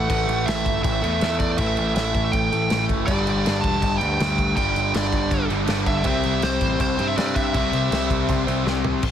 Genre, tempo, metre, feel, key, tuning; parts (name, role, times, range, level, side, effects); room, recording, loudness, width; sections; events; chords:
punk rock; 161 BPM; 4/4; straight; A4 = 443 Hz
nasal lead guitar with a parked wah; melody; 0.0-8.6 s; C5 to A5; -25 LUFS; right 2 dB; overdrive
biting overdriven guitar; riff; 0.0-9.0 s; G2 to C4; -24 LUFS; left 1 dB
growling picked electric bass; bass; 0.0-9.1 s; E1 to G2; -26 LUFS; equal; overdrive
loose indie drum kit; drums; 0.1-9.1 s; crash cymbal, kick drum, snare drum, toms; -26 LUFS; equal
distorted electric guitar; riff; 3.1-9.0 s; G2 to C4; -28 LUFS; equal; overdrive
little or no reverb; dense, heavily limited modern master; -19 LUFS; side -9 dB against mid
0.0-9.0 A section
drum fill 8.7-9.0
0.0 A5; 3.1 G5; 6.1 C